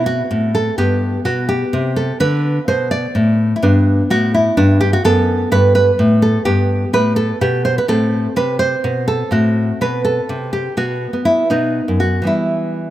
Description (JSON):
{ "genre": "classical, baroque-style dance for nylon-string guitar", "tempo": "84 BPM (dotted quarters)", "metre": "12/8", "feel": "rubato", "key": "G major", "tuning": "A4 = 440 Hz", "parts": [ { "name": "nylon-string guitar", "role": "solo", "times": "0.0-12.9 s", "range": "F#2 to D5", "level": "-13 LUFS", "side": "equal", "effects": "none" } ], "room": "light reverb, small room ambience", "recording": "rough home demo mix", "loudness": "-13 LUFS", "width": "side -13 dB against mid", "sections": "0.0-12.9 A section", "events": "none", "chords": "0.0 F#dim; 0.8 G; 5.1 B5/F#; 6.5 Gadd9; 7.9 Am; 10.8 N.C.; 11.5 B; 12.3 Em" }